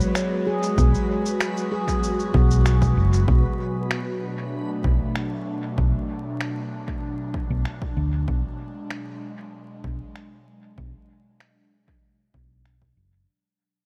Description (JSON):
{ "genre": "ambient dub", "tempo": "96 BPM", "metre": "4/4", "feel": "straight", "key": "B dorian", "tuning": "A4 = 440 Hz", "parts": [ { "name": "airy breathy pad", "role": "sustained chords", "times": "0.0-13.3 s", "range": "B2 to F#4", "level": "-31 LUFS", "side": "equal", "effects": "chorus" }, { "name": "handpan", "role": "arpeggios", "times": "0.0-3.7 s", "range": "F#3 to C#5", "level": "-32 LUFS", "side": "equal", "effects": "tape echo" }, { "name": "electronic shaker and finger snaps", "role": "drums", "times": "0.0-12.8 s", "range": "none", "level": "-33 LUFS", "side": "equal", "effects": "studio ambience, dub echo" }, { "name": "backwards swelling texture", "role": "texture", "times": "0.0-3.3 s", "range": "B3 to B4", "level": "-40 LUFS", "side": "equal", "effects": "built-in reverb" }, { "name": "hollow-body short-scale fingered electric bass", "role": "bass", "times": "0.8-13.2 s", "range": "F#1 to D2", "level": "-22 LUFS", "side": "equal", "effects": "none" }, { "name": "electronic kick drum", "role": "drums", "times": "0.8-12.9 s", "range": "none", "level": "-29 LUFS", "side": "equal", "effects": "overdrive, studio ambience" } ], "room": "little or no reverb", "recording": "vinyl crackle", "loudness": "-23 LUFS", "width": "mono", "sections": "0.0-3.3 A section; 3.3-13.3 B section", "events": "fade-out 3.3-13.3", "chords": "0.0 Eadd9/B (rootless); 3.3 Bm7", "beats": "0.15 | 0.78 1.40 2.03 2.65 | 3.28 3.90 4.53 5.15 | 5.78 6.40 7.03 7.65 | 8.28 8.90 9.53 10.15 | 10.78 11.40 12.03 12.65" }